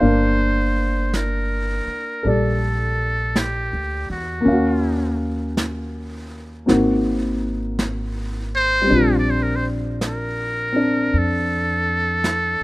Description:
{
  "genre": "jazz ballad",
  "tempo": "54 BPM",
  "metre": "4/4",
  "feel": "swing 66% on 8ths",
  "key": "unclear",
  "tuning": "A4 = 440 Hz",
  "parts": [
    { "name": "trumpet with metal mute", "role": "melody", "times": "0.0-12.6 s", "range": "Gb4 to D5", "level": "-22 LUFS", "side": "equal", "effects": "none" },
    { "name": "warm concert grand piano", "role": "accompaniment", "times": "0.0-12.6 s", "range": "G3 to F5", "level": "-21 LUFS", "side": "left 1 dB", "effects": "none" },
    { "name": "upright bass", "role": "bass", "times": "0.0-12.6 s", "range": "G1 to F2", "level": "-24 LUFS", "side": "equal", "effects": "none" },
    { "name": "vintage brush drum kit", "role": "drums", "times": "0.0-12.6 s", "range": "brushed snare drum, hi-hat, snare drum", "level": "-28 LUFS", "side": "right 1 dB", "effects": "none" }
  ],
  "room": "little or no reverb",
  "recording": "rough home demo mix",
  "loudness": "-18 LUFS",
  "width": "side -20 dB against mid",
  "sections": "0.0-12.6 A section",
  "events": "none",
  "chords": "0.0 Gm9; 4.5 Ebm7; 6.7 Ab9; 8.9 Bb6"
}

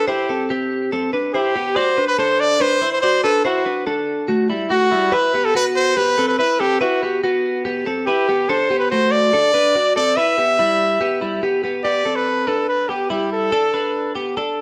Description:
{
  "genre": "indie pop",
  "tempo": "143 BPM",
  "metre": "4/4",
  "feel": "straight",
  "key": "E minor",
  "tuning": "A4 = 439 Hz",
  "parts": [
    { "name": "brilliant trumpet", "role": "melody", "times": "0.0-14.1 s", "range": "F#4 to E5", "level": "-20 LUFS", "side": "equal", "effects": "plate reverb" },
    { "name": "direct-recorded clean electric guitar", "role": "arpeggios", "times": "0.0-14.6 s", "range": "G3 to D5", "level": "-23 LUFS", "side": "equal", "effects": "analog chorus" }
  ],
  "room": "wet studio reverb, RT60 0.6 s",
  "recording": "none",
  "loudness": "-18 LUFS",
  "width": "mono",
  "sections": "0.0-11.8 A section; 11.8-14.6 B section",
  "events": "none",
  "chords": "0.0 C; 1.8 Dadd9; 5.1 Emadd9; 8.5 D; 10.2 Em; 11.8 Em7; 13.5 Bm7"
}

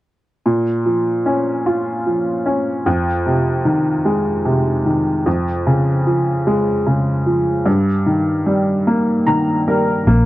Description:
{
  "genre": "pop",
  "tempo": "50 BPM (dotted quarters)",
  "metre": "6/8",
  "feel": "straight",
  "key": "Bb dorian",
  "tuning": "A4 = 439 Hz",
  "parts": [
    { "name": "clear upright piano", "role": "accompaniment", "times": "0.5-10.3 s", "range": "F2 to Bb5", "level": "-15 LUFS", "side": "equal", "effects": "none" },
    { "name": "vintage muted fingered electric bass", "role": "bass", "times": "10.1-10.3 s", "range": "Bb1", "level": "-11 LUFS", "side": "equal", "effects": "tube saturation" }
  ],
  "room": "little or no reverb",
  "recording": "dry, close 1970s-style studio recording",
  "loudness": "-15 LUFS",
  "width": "side -16 dB against mid",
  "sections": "0.5-10.1 A section",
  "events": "upright piano fill 8.9-10.1",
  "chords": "0.5 Bbm; 2.9 Fm7; 5.3 Db/F; 7.7 Eb/G"
}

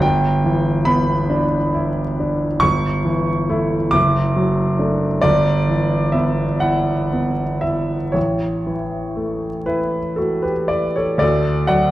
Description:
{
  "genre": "classical, romantic nocturne for solo piano",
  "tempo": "38-48 BPM (dotted quarters)",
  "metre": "12/8",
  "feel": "rubato",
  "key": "unclear",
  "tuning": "A4 = 444 Hz",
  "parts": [
    { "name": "clear grand piano", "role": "solo", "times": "0.0-11.9 s", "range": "F#1 to D6", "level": "-16 LUFS", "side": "equal", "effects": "none" }
  ],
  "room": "wet recital hall reverb, RT60 1.5 s",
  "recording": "dark, warm production, vinyl crackle",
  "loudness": "-16 LUFS",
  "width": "side -15 dB against mid",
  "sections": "0.0-11.2 A section",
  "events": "none",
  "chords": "0.0 Em7/G; 2.6 A7/G; 4.0 D/F#; 5.2 Em/G; 8.2 A; 11.2 D"
}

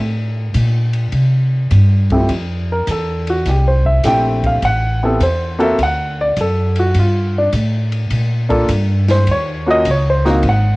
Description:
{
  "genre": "jazz piano trio",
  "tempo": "103 BPM",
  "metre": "4/4",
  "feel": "swing 68% on 8ths",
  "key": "F major",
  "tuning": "A4 = 440 Hz",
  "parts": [
    { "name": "upright bass", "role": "bass", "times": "0.0-10.8 s", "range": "Ab1 to C3", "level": "-15 LUFS", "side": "equal", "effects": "transformer saturation" },
    { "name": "open jazz drum kit", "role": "drums", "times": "0.5-10.6 s", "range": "hi-hat, kick drum, ride cymbal, snare drum", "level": "-26 LUFS", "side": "left 1 dB", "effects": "cassette tape" },
    { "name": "warm baby grand piano", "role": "melody", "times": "2.1-10.8 s", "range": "F2 to G5", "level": "-16 LUFS", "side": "equal", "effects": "cassette tape" }
  ],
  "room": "small room ambience",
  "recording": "home recording on cassette",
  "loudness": "-13 LUFS",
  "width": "side -22 dB against mid",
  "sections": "0.0-2.3 A section; 2.3-10.8 B section",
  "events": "grand piano solo 2.3-10.8",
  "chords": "0.0 N.C.; 1.1 C5; 2.3 Fmaj9; 4.6 Am; 5.8 D; 7.0 Gm9; 9.3 Ebm7"
}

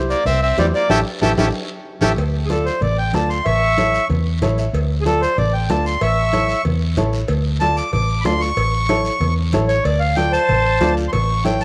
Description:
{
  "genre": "latin, cumbia",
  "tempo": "188 BPM",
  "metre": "4/4",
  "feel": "straight",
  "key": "D harmonic minor",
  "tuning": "A4 = 439 Hz",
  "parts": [
    { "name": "warm upright piano", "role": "accompaniment", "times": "0.0-11.6 s", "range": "E4 to A5", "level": "-26 LUFS", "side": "equal", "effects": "none" },
    { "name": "vintage muted fingered electric bass", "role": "bass", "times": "0.0-11.6 s", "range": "A1 to E2", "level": "-22 LUFS", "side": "equal", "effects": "none" },
    { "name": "accordion", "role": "melody", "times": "0.1-11.6 s", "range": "G#4 to D6", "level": "-22 LUFS", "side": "equal", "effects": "none" },
    { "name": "brilliant trumpet", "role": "second line", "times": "0.1-2.1 s", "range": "G3 to C#4", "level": "-30 LUFS", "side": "equal", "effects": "none" },
    { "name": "guiro", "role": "percussion", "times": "0.1-11.6 s", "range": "none", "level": "-38 LUFS", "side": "equal", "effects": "none" },
    { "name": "congas", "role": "percussion", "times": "0.3-11.6 s", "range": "none", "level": "-30 LUFS", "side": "equal", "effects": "none" },
    { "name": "cowbell and timbales", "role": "percussion", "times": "0.3-11.6 s", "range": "none", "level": "-33 LUFS", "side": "equal", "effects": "none" }
  ],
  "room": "light reverb, studio ambience",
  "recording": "none",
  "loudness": "-18 LUFS",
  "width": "mono",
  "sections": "0.0-2.2 A section; 2.2-11.6 B section",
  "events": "band accent 0.9-2.2; drum fill 1.2-2.2; accordion solo 2.2-11.6; upright piano fill 4.3-4.7",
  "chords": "0.0 C; 0.9 A7; 2.2 Dm; 3.5 A; 4.7 Dm; 6.0 A; 7.3 Dm; 8.6 A; 9.9 Dm; 11.1 A"
}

